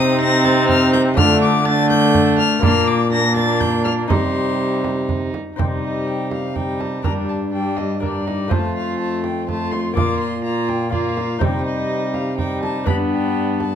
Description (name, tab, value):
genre	classical, renaissance-style consort dance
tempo	123 BPM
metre	3/4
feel	straight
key	C dorian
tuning	A4 = 440 Hz
part	dark violin	melody	0.0-13.8 s	D5 to Bb6	-24 LUFS	left 5 dB	none
part	warm violin	second line	0.0-13.8 s	D4 to F4	-24 LUFS	right 5 dB	none
part	lute	accompaniment	0.0-13.8 s	F2 to Eb5	-27 LUFS	left 9 dB	none
part	warm viola	accompaniment	0.0-13.8 s	G3 to C4	-23 LUFS	left 4 dB	none
part	warm trombone	bass	0.0-13.8 s	F2 to D3	-22 LUFS	right 2 dB	none
part	frame drum	percussion	0.4-13.8 s	none	-23 LUFS	right 3 dB	none
room	moderate recital hall reverb, RT60 1.3 s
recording	close, detailed microphones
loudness	-16 LUFS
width	side -8 dB against mid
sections	0.0-5.6 A section; 5.6-13.8 B section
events	none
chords	0.0 Cm; 1.2 Dm; 2.6 Bb; 4.1 Cm; 7.1 Gm; 8.5 F; 10.0 Bb; 11.4 Cm; 12.9 G